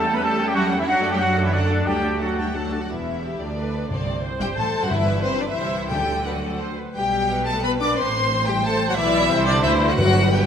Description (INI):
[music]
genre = classical, dramatic, fast romantic movement for symphony orchestra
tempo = 178 BPM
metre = 3/4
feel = rubato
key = G major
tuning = A4 = 443 Hz
[part]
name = rich chamber violin section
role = melody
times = 0.0-10.5 s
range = C5 to D6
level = -25 LUFS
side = left 2 dB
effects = none
[part]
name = silver concert flute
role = second line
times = 0.0-2.5 s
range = D5 to B5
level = -28 LUFS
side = equal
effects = none
[part]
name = warm symphonic violin section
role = second line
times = 0.0-10.5 s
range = C4 to B5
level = -28 LUFS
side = left 2 dB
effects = none
[part]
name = rich symphonic viola section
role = accompaniment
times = 0.0-10.5 s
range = F#3 to D5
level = -28 LUFS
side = right 2 dB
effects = none
[part]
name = dark French horn section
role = sustained chords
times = 0.0-10.5 s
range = C3 to D4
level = -28 LUFS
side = left 3 dB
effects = none
[part]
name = clear trumpet section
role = stabs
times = 0.0-2.5 s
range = D4 to B4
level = -25 LUFS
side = right 2 dB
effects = none
[part]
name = clear symphonic cello section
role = bass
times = 0.0-10.5 s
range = C2 to B3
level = -29 LUFS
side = right 2 dB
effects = none
[part]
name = rich symphonic double bass section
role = bass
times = 0.0-10.5 s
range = E1 to F#2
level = -27 LUFS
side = right 2 dB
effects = none
[part]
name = clear oboe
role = second line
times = 0.1-2.8 s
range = F#5 to A5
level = -33 LUFS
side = right 1 dB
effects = none
[part]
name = warm clarinet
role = second line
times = 0.1-2.8 s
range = C#4 to D4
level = -33 LUFS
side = left 2 dB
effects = none
[part]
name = timpani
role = percussion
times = 3.9-6.4, 10.0-10.5 s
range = G2 to D3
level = -26 LUFS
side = equal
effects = none
[sound]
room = wet concert hall reverb, RT60 2.0 s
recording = none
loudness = -19 LUFS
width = side -8 dB against mid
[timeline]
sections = 0.0-2.9 A section; 2.9-10.5 B section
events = none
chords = 0.0 A7/E; 0.9 D/F#; 1.9 D; 2.9 G; 3.9 D7/C; 4.9 G; 5.6 C; 5.9 D; 7.0 G/B; 8.0 Am7; 9.0 Bmadd11; 9.3 C; 9.6 Dsus2